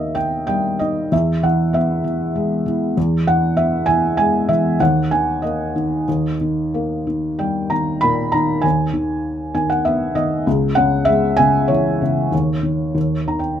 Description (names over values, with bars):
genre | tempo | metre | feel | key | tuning
classical, lyrical solo piano | 96 BPM | 3/4 | uneven beats, rubato | unclear | A4 = 440 Hz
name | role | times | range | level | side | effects
felt-muted upright piano | solo | 0.0-13.6 s | C#2 to B5 | -16 LUFS | equal | none
room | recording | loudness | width
light reverb | close, detailed microphones | -16 LUFS | side -9 dB against mid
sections
0.0-13.6 A section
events
felt piano fill 9.2-10.5, 13.0-13.6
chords
0.0 D#; 1.1 E; 4.8 D#5; 6.1 D#; 8.6 G#m/D#; 10.5 C#m; 12.3 N.C.; 13.0 D#5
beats
0.49 | 1.13 1.75 2.36 | 2.97 3.57 4.18 | 4.80 5.42 6.07 | 6.73 7.38 8.02 | 8.64 9.25 9.86 | 10.47 11.08 11.70 | 12.32 12.96